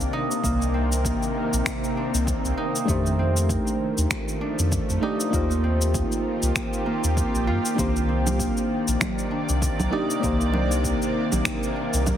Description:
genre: sunset chillout.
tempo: 98 BPM.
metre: 4/4.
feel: swing 57% on 16ths.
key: C dorian.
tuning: A4 = 440 Hz.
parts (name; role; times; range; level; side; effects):
shimmering ambient pad; sustained chords; 0.0-12.2 s; C3 to D5; -28 LUFS; equal; chorus, built-in reverb.
Celtic harp; arpeggios; 0.0-12.2 s; A3 to F4; -30 LUFS; right 1 dB; digital delay.
warm sub bass; bass; 0.0-12.1 s; Bb1 to G2; -24 LUFS; equal; none.
electronic shaker, finger snaps and congas; drums; 0.0-12.2 s; none; -28 LUFS; right 1 dB; none.
electronic kick drum; drums; 0.4-12.2 s; none; -31 LUFS; equal; none.
mellow FM electric piano; accompaniment; 2.9-12.2 s; Eb3 to D5; -28 LUFS; equal; chorus, auto-pan, digital delay.
room: light reverb.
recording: heavily compressed radio sound, multiband compression.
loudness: -21 LUFS.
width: side -10 dB against mid.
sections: 0.0-12.2 A section.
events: none.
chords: 0.0 Cm9; 2.9 F13; 5.3 Eb69; 7.8 Cm9.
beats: | 0.43 1.05 1.66 2.27 | 2.88 3.50 4.11 4.72 | 5.33 5.94 6.56 7.17 | 7.78 8.39 9.01 9.62 | 10.23 10.84 11.45 12.07.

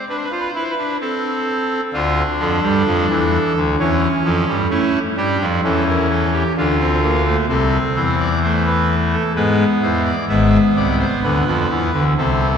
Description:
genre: classical, baroque-style 3-part fugue for pipe organ.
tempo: 65 BPM.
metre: 3/4.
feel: straight.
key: unclear.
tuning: A4 = 440 Hz.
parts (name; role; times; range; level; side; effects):
pipe organ, trumpet; solo; 0.0-12.6 s; G#1 to E5; -15 LUFS; equal; none.
room: wet church reverb, RT60 2.7 s.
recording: dark, warm production.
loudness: -15 LUFS.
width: side -7 dB against mid.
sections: 0.0-12.6 A section.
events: none.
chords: 0.0 E7(no3); 1.0 Am/C; 1.9 Dm; 3.8 A/E; 4.7 A7; 6.6 Dm; 7.5 Am/C; 9.3 E/G#; 10.3 E7/G#.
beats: 0.07 1.00 | 1.93 2.86 3.78 | 4.70 5.63 6.56 | 7.48 8.41 9.35 | 10.28 11.22 12.17.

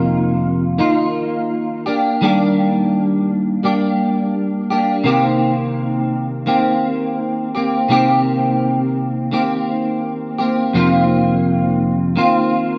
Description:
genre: indie pop.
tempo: 84 BPM.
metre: 4/4.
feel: swing 60% on 16ths.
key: C minor.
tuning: A4 = 440 Hz.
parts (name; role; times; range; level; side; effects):
clean electric guitar; solo; 0.0-12.8 s; F2 to G4; -17 LUFS; equal; ensemble chorus, vibrato effect.
room: moderate spring reverb, RT60 1.6 s, digital ambience.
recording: nothing above 7.8 kHz.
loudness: -17 LUFS.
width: mono.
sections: 0.0-12.8 A section.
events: none.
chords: 0.0 F7sus4; 1.9 Ebmaj7; 5.1 Cm7; 10.8 F7sus4.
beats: 0.08 0.79 1.50 | 2.22 2.93 3.64 4.35 | 5.06 5.77 6.49 7.20 | 7.91 8.62 9.33 10.04 | 10.75 11.46 12.18.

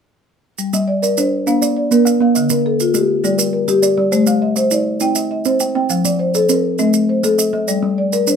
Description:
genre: southern african traditional, mbira-style interlocking cycle.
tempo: 135 BPM (dotted quarters).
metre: 12/8.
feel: straight.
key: G equiheptatonic.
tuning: A4 = 440 Hz.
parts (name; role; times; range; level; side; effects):
marimba with soft mallets; arpeggios; 0.6-8.4 s; D3 to G5; -16 LUFS; left 3 dB; none.
maracas; percussion; 0.6-8.4 s; none; -22 LUFS; right 7 dB; none.
kalimba; arpeggios; 0.7-8.4 s; D3 to G5; -18 LUFS; right 5 dB; none.
room: light reverb.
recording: minimal, uncompressed stereo recording.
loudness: -13 LUFS.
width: side -7 dB against mid.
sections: 0.6-8.4 A section.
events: none.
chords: 0.6 Gm; 1.5 Bb; 2.4 Dm; 3.2 Gm; 4.1 Am; 5.0 C; 5.9 F; 6.8 Am; 7.7 Gm.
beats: | 0.59 1.03 1.47 1.91 | 2.36 2.80 3.24 3.68 | 4.13 4.57 5.01 5.46 | 5.90 6.34 6.79 7.24 | 7.68 8.12.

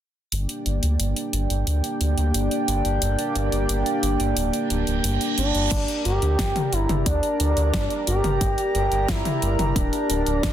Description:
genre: synthwave.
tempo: 89 BPM.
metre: 4/4.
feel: straight.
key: G dorian.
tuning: A4 = 441 Hz.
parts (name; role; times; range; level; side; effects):
chorused pulse-width pad; sustained chords; 0.3-10.5 s; Bb3 to Bb5; -26 LUFS; equal; sidechain pumping.
round analog bass; bass; 0.3-10.5 s; D1 to D2; -24 LUFS; equal; none.
pop drum kit; drums; 0.3-10.5 s; crash cymbal, hi-hat, snare drum, toms; -28 LUFS; left 1 dB; none.
reverse cymbal; sound effects; 4.7-5.7 s; none; -30 LUFS; right 7 dB; none.
expressive synth lead; melody; 5.4-10.5 s; D4 to G4; -25 LUFS; equal; chorus, tape echo.
electronic kick drum; drums; 5.7-10.5 s; none; -26 LUFS; equal; none.
room: light reverb, digital ambience.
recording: dense, heavily limited modern master.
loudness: -20 LUFS.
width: side -11 dB against mid.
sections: 0.3-5.7 A section; 5.7-10.5 B section.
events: reverse cymbal 4.7-5.7.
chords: 0.3 Gm.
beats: | 0.32 1.00 1.67 2.34 | 3.02 3.69 4.37 5.04 | 5.71 6.39 7.06 7.74 | 8.41 9.09 9.76 10.43.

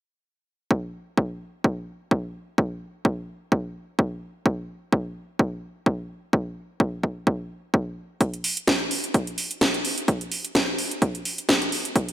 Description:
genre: house.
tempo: 128 BPM.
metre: 4/4.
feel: swing 55% on 16ths.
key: none.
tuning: none.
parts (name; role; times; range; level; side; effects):
electronic kick drum; drums; 0.7-12.1 s; none; -23 LUFS; equal; high-pass filter on kick.
house drum kit; drums; 8.2-12.1 s; hi-hat, snare drum; -23 LUFS; equal; none.
room: moderate lush hall reverb, RT60 2.0 s.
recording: dreamy mix soaked in reverb.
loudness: -23 LUFS.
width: side -13 dB against mid.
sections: 0.7-12.1 A section.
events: none.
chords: none.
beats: | 0.71 1.18 1.64 2.11 | 2.58 3.05 3.52 3.99 | 4.46 4.92 5.39 5.86 | 6.33 6.80 7.27 7.74 | 8.21 8.68 9.14 9.61 | 10.08 10.55 11.02 11.49 | 11.96.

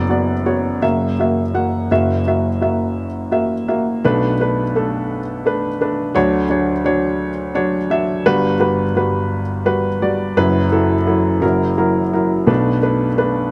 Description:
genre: folk.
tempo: 57 BPM (dotted quarters).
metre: 6/8.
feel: straight.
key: B minor.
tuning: A4 = 439 Hz.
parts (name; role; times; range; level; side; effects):
warm upright piano; solo; 0.0-13.5 s; F#1 to F#5; -18 LUFS; equal; none.
room: little or no reverb.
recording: close, detailed microphones.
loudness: -18 LUFS.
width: mono.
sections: 0.0-1.9 A section; 1.9-4.0 B section; 4.0-13.5 C section.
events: none.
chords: 0.0 Bm/F#; 0.8 F#7; 4.0 Bm7; 6.2 Dmaj7; 8.3 Gmaj7; 10.4 F#7sus4; 11.4 F#7; 12.5 Bm7.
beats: 0.83 | 1.91 2.97 | 4.03 5.09 | 6.15 7.21 | 8.26 9.31 | 10.37 11.43 | 12.50.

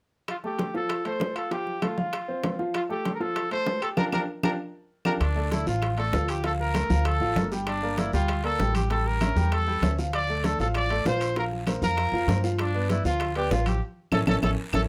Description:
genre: latin, salsa.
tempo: 195 BPM.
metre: 4/4.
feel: straight.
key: unclear.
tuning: A4 = 440 Hz.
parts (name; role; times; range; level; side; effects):
warm trumpet; melody; 0.3-14.8 s; D4 to D5; -32 LUFS; equal; none.
bongos; percussion; 0.3-14.8 s; none; -36 LUFS; equal; none.
claves; percussion; 0.3-14.8 s; none; -42 LUFS; equal; none.
congas; percussion; 0.3-14.8 s; none; -35 LUFS; equal; none.
timbales; percussion; 0.3-14.8 s; none; -38 LUFS; equal; none.
clear upright piano; accompaniment; 0.4-14.8 s; F3 to G5; -33 LUFS; equal; none.
upright bass; bass; 5.2-14.8 s; G1 to G2; -30 LUFS; equal; none.
guiro; percussion; 5.2-14.8 s; none; -46 LUFS; equal; none.
room: light reverb.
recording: close, detailed microphones.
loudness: -26 LUFS.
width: mono.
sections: 0.3-5.2 A section; 5.2-14.9 B section.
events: band accent 4.0-5.2, 13.8-14.9; drum fill 4.3-5.2, 14.6-14.9.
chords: 0.3 Fadd9; 4.0 Gm7; 5.2 Dm; 6.4 Bbmaj7/D; 7.7 Gmadd9; 8.9 A7; 10.1 Dm; 11.4 Bbsus2; 12.6 G7; 13.8 A.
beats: | 0.28 0.59 0.90 1.20 | 1.51 1.82 2.13 2.43 | 2.74 3.05 3.36 3.67 | 3.97 4.28 4.59 4.90 | 5.21 5.51 5.82 6.13 | 6.44 6.75 7.05 7.36 | 7.67 7.98 8.28 8.59 | 8.90 9.21 9.52 9.82 | 10.13 10.44 10.74 11.05 | 11.36 11.67 11.97 12.28 | 12.59 12.89 13.20 13.51 | 13.81 14.12 14.43 14.73.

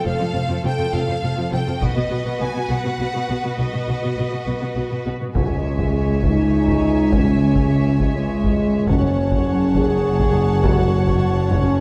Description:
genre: cinematic, epic orchestral film score.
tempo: 68 BPM (dotted quarters).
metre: 6/8.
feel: straight.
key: C# minor from 5.4 s.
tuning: A4 = 439 Hz.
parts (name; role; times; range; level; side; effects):
clear studio violin section; melody; 0.0-11.8 s; D#5 to A5; -33 LUFS; equal; none.
rich symphonic violin section; second line; 0.0-11.8 s; F#4 to F#5; -32 LUFS; equal; none.
rich symphonic viola section; accompaniment; 0.0-11.8 s; B3 to C#5; -33 LUFS; equal; none.
warm symphonic cello section; bass; 0.0-11.8 s; C#2 to B2; -27 LUFS; equal; none.
rich chamber double bass section; bass; 0.1-11.8 s; F1 to C#2; -26 LUFS; equal; none.
taiko ensemble; drums; 1.8-11.8 s; none; -25 LUFS; equal; none.
dark French horn section; sustained chords; 5.4-11.8 s; G#3 to G#4; -23 LUFS; equal; none.
mellow tuba; bass; 5.4-11.8 s; F#1 to C#2; -28 LUFS; equal; none.
room: wet recital hall reverb, RT60 1.8 s.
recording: dark, warm production.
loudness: -19 LUFS.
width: mono.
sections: 0.0-5.4 A section; 5.4-11.8 B section.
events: none.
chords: 0.0 F; 1.8 B; 5.4 C#m; 8.9 F#m.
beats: | 0.05 0.94 | 1.82 2.71 | 3.59 4.47 | 5.36 6.24 | 7.12 8.00 | 8.88 9.76 | 10.64 11.52.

